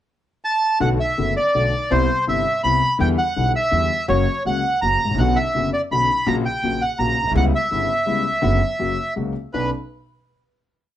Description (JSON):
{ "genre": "tango", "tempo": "165 BPM", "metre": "3/4", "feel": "rubato", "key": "B harmonic minor", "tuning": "A4 = 439 Hz", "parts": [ { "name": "bandoneon", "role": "melody", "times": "0.4-9.7 s", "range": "B4 to B5", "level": "-20 LUFS", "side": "right 1 dB", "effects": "plate reverb" }, { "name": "warm concert grand piano", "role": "accompaniment", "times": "0.8-9.7 s", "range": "F#1 to F#4", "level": "-23 LUFS", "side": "left 4 dB", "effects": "none" }, { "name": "upright bass", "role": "bass", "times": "0.8-9.7 s", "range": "F#1 to E2", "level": "-24 LUFS", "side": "right 2 dB", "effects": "none" } ], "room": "light reverb", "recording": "none", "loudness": "-17 LUFS", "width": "side -12 dB against mid", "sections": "0.0-0.8 pickup bar; 0.8-9.5 variation; 9.5-10.6 final chord", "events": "none", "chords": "0.0 N.C.; 0.8 Bm7; 1.9 Cmaj7; 3.0 Em7; 4.1 F#; 5.2 Bmadd9; 6.3 F#/A#; 7.4 C#m7b5; 8.4 Bm/F#; 8.8 F#; 9.5 Bmadd9", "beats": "0.08 0.45 | 0.81 1.18 1.54 | 1.91 2.27 2.64 | 3.00 3.36 3.73 | 4.09 4.46 4.82 | 5.18 5.55 5.91 | 6.27 6.63 7.00 | 7.36 7.72 8.08 | 8.44 8.80 9.17 | 9.53" }